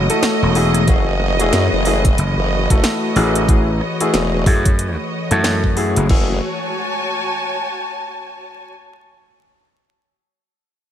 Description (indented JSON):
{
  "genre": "glitch hop",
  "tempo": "92 BPM",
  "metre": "4/4",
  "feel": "swing 60% on 16ths",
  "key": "F# dorian",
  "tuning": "A4 = 441 Hz",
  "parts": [
    { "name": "warbly tape-like pad", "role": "sustained chords", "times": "0.0-6.4 s", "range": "E3 to B4", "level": "-26 LUFS", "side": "left 1 dB", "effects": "chorus, built-in reverb, sidechain pumping" },
    { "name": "gritty slap bass", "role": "bass", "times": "0.0-6.1 s", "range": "E1 to F#2", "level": "-17 LUFS", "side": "equal", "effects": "overdrive, tube saturation" },
    { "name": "muted studio string section", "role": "texture", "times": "0.0-8.7 s", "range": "F#4 to A5", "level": "-23 LUFS", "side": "right 1 dB", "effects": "sidechain pumping" },
    { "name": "warm grand piano", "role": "stabs", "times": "0.1-6.4 s", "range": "A3 to A4", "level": "-21 LUFS", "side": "left 2 dB", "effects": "sidechain pumping, ping-pong delay" },
    { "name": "drum and bass drum kit", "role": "drums", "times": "0.1-6.3 s", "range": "crash cymbal, hi-hat, rim click, snare drum", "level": "-23 LUFS", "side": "equal", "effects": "none" },
    { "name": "formant-sweep wobble bass", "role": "bass", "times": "0.9-6.4 s", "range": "E1 to F#2", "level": "-18 LUFS", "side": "equal", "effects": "chorus" },
    { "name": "electronic kick drum", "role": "drums", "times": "0.9-6.3 s", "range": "none", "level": "-15 LUFS", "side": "equal", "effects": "none" }
  ],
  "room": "light reverb, digital ambience",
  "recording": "bright 1980s-style digital production, vinyl crackle",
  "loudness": "-14 LUFS",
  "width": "side -10 dB against mid",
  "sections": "0.0-6.1 A section; 6.1-8.7 B section",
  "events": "drop 0.0-6.1",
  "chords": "0.0 F#m9",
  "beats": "0.23 | 0.88 1.53 2.19 2.84 | 3.49 4.14 4.79 5.45 | 6.10 6.75 7.40 8.05"
}